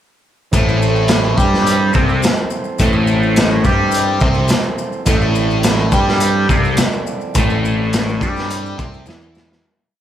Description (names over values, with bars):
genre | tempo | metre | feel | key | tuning
psychedelic rock | 105 BPM | 4/4 | straight | A minor | A4 = 440 Hz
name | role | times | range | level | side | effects
combo organ | sustained chords | 0.5-9.6 s | E3 to D5 | -26 LUFS | right 3 dB | none
fuzz guitar | riff | 0.5-9.6 s | A2 to G4 | -17 LUFS | left 1 dB | distortion, phaser
fuzz picked electric bass | bass | 0.5-9.6 s | A1 to G2 | -19 LUFS | right 1 dB | overdrive
crunchy breakbeat drum kit | drums | 0.5-9.6 s | hi-hat, kick drum, snare drum | -17 LUFS | equal | none
maracas | percussion | 0.5-9.5 s | none | -33 LUFS | left 9 dB | none
room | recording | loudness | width
light reverb | band playing live in one room | -13 LUFS | side -10 dB against mid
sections
0.5-9.6 riff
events
fade-out 7.4-9.6; drum fill 9.1-9.6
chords
0.5 Am